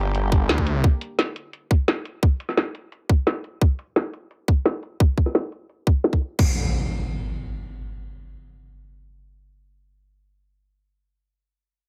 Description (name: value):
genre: dark technical drum and bass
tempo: 173 BPM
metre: 4/4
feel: straight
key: G minor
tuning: A4 = 441 Hz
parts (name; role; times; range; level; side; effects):
- dark studio string section; sustained chords; 0.0-0.8 s; D3 to G4; -35 LUFS; equal; sidechain pumping
- snarling distorted saw bass; bass; 0.0-0.8 s; G1 to D2; -25 LUFS; equal; none
- drum and bass drum kit; drums; 0.1-6.5 s; crash cymbal, hi-hat, snare drum; -25 LUFS; equal; low-pass filter on hats, low-pass filter on snare, low-pass filter on cymbals, low-pass filter on room
- electronic kick drum; drums; 0.3-6.5 s; none; -20 LUFS; equal; overdrive
- impact; sound effects; 6.4-10.7 s; none; -30 LUFS; equal; none
room: digital ambience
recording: none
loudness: -23 LUFS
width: mono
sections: 0.0-6.4 A section; 6.4-9.2 B section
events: filter sweep on drum 0.0-6.4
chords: 0.0 Gm; 6.4 N.C.